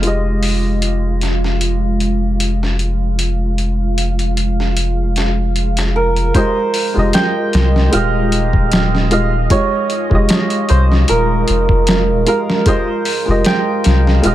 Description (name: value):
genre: trip hop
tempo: 76 BPM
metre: 4/4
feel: swing 54% on 16ths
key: F minor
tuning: A4 = 438 Hz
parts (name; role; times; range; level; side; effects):
- santur; melody; 0.0-0.7, 6.0-14.3 s; Bb4 to G5; -18 LUFS; right 4 dB; tape echo
- dark upright piano; accompaniment; 0.0-14.3 s; Ab3 to F5; -21 LUFS; equal; harmonic tremolo, tape echo
- deep dark ambient pad; sustained chords; 0.0-14.3 s; Ab3 to F5; -22 LUFS; right 2 dB; chorus, built-in reverb
- soft dub sub bass; bass; 0.0-14.3 s; Eb1 to C2; -16 LUFS; equal; none
- dusty soul sampler-style drum kit; drums; 0.0-14.3 s; hi-hat, kick drum, snare drum; -18 LUFS; equal; overdrive, high-pass filter on hats, high-pass filter on snare, high-pass filter on kick, high-pass filter on room
room: little or no reverb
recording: none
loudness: -13 LUFS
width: side -13 dB against mid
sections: 0.0-6.3 A section; 6.3-14.3 B section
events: filter sweep on ambient pad 0.0-6.3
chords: 0.0 Fm9